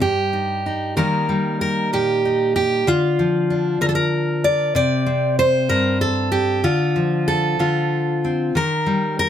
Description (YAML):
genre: folk, solo fingerstyle acoustic guitar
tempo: 63 BPM (dotted quarters)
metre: 6/8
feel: straight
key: unclear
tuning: A4 = 439 Hz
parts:
  - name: fingerpicked steel-string acoustic guitar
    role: solo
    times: 0.0-9.3 s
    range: G2 to D5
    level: -17 LUFS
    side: equal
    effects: none
room: light reverb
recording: none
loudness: -17 LUFS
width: side -9 dB against mid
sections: 1.0-9.3 A section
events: none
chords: 0.0 Cm (rootless); 1.0 Eb; 2.9 Bb/D; 4.8 Csus2; 6.6 Dm7; 8.6 Eb